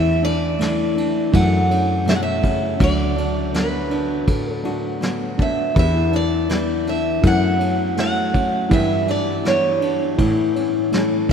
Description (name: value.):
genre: acoustic folk-pop ballad.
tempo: 81 BPM.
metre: 4/4.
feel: straight.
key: E dorian.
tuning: A4 = 436 Hz.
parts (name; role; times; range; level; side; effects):
picked old ladder-braced acoustic guitar; melody; 0.0-10.9 s; B4 to F#5; -23 LUFS; right 3 dB; none.
nylon-string guitar; accompaniment; 0.0-11.3 s; E2 to A4; -23 LUFS; left 6 dB; none.
felt-muted upright piano; arpeggios; 0.0-11.3 s; E3 to A4; -24 LUFS; right 2 dB; none.
woody fretless electric bass; bass; 0.0-11.3 s; D2 to A2; -23 LUFS; equal; none.
vintage brush drum kit; drums; 0.2-11.3 s; kick drum, ride cymbal, snare drum; -24 LUFS; equal; none.
room: wet cathedral reverb, RT60 6.5 s.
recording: in a vast, echoing space.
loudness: -17 LUFS.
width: side -7 dB against mid.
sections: 0.0-11.3 A section.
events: none.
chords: 0.0 Asus4/E; 1.3 F#m7; 2.8 D6; 5.8 Em7; 7.2 F#m7; 8.7 Em7/G; 10.2 A.